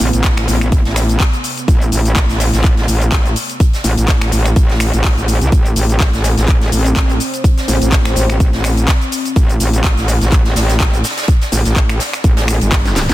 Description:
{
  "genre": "bass house",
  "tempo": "125 BPM",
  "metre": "4/4",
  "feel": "swing 56% on 16ths",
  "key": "A minor",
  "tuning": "A4 = 445 Hz",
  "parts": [
    { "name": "sweeping resonant pad", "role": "sustained chords", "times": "0.0-13.1 s", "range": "C3 to C4", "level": "-25 LUFS", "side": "equal", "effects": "chorus, sidechain pumping" },
    { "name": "metallic wobble bass", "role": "bass", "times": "0.0-13.1 s", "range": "G1 to C2", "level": "-14 LUFS", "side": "equal", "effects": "distortion, chorus, overdrive, sidechain pumping" },
    { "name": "house drum kit", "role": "drums", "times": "0.0-13.1 s", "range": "finger snaps, handclaps, hi-hat, shaker, snare drum", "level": "-20 LUFS", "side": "left 1 dB", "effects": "overdrive" },
    { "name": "huge arena drum kit", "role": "drums", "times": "0.0-13.1 s", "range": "hi-hat, snare drum", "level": "-26 LUFS", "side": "right 1 dB", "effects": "high-pass filter on hats, high-pass filter on snare, high-pass filter on room" },
    { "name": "electronic kick drum", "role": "drums", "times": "0.2-12.8 s", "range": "none", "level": "-13 LUFS", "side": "equal", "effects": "none" }
  ],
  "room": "studio reverb",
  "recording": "dense, heavily limited modern master",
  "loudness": "-11 LUFS",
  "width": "side -16 dB against mid",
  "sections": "0.0-13.1 A section",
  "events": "drum fill 12.8",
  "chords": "0.0 Amadd9"
}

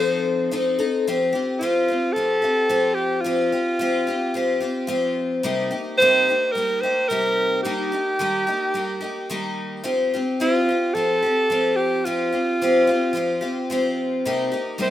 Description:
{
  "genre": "rock",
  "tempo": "109 BPM",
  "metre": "4/4",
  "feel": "straight",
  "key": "unclear",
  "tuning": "A4 = 436 Hz",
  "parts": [
    { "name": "bright alto saxophone", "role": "melody", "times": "0.0-14.9 s", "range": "F4 to C5", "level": "-21 LUFS", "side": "right 1 dB", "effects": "none" },
    { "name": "picked twelve-string acoustic guitar", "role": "accompaniment", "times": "0.0-14.9 s", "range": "C3 to A4", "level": "-22 LUFS", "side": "left 2 dB", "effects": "none" }
  ],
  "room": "light reverb, studio reverb",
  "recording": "rough home demo mix",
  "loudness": "-19 LUFS",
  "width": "side -12 dB against mid",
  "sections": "0.0-1.0 A section; 1.0-14.9 B section",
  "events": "none",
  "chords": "0.0 F7; 1.0 Fsus2; 5.4 Cm7; 7.6 Eb; 9.8 Fsus2; 14.2 Cm7"
}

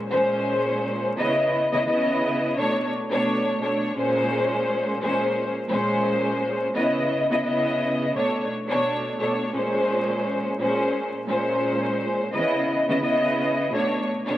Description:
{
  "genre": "hip hop",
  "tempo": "86 BPM",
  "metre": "4/4",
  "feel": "swing 58% on 16ths",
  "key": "unclear",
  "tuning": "A4 = 441 Hz",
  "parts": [
    { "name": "warm studio string section", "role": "solo", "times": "0.1-14.4 s", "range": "Bb2 to Eb5", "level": "-21 LUFS", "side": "equal", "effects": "cassette tape, high-pass filter, low-pass filter, tape echo" }
  ],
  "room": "moderate plate reverb, RT60 2.9 s",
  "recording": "vinyl crackle, lossy compression artefacts",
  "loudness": "-21 LUFS",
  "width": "side -13 dB against mid",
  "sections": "0.0-9.5 A section; 9.5-14.4 B section",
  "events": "none",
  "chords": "0.0 Bbm9; 1.2 Dbm9; 2.6 Bm9; 4.0 Bbm9; 6.7 Dbm9; 8.1 Bm9; 9.5 Bbm9; 12.3 Dbm9; 13.7 Bm9"
}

